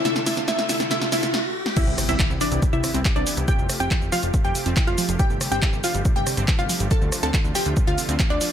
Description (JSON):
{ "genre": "uplifting trance", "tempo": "140 BPM", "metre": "4/4", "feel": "straight", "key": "C major", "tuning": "A4 = 443 Hz", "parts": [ { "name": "wide unison pluck", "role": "melody", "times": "0.0-8.5 s", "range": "D4 to A5", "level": "-26 LUFS", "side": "equal", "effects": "sidechain pumping, tape echo" }, { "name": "riser and impact", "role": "sound effects", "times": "0.0-3.5 s", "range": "none", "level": "-30 LUFS", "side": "left 1 dB", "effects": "none" }, { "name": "filtered supersaw swell", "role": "sustained chords", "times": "0.1-8.5 s", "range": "C3 to A4", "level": "-33 LUFS", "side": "equal", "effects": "sidechain pumping" }, { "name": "wide unison pluck", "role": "arpeggios", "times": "0.1-8.5 s", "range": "C3 to C4", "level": "-31 LUFS", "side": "right 4 dB", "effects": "sidechain pumping, tape echo" }, { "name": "punchy analog drum machine", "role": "drums", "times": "0.1-8.5 s", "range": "crash cymbal, handclaps, hi-hat, rim click, shaker, snare drum", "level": "-26 LUFS", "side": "equal", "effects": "sidechain pumping on hats, sidechain pumping on perc, sidechain pumping on cymbals" }, { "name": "electronic kick drum", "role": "drums", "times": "1.8-8.3 s", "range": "none", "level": "-21 LUFS", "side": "equal", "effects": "none" }, { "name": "plucky analog bass", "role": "bass", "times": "1.9-8.4 s", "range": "F1 to D2", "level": "-27 LUFS", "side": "equal", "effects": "sidechain pumping" } ], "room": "light reverb", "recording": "none", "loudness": "-19 LUFS", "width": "side -9 dB against mid", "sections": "0.0-1.8 A section; 1.8-8.5 B section", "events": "build-up 0.0-1.8; drum fill 0.0-1.3, 1.3-1.8; riser 0.0-1.8; filter sweep on synth pluck 0.0-1.8; stop 1.3-1.8; drop 1.8-8.5; impact 1.8-3.5", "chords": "0.1 Dm; 1.8 Cmaj7; 3.5 Fadd9; 5.2 Gsus2; 6.9 Dm" }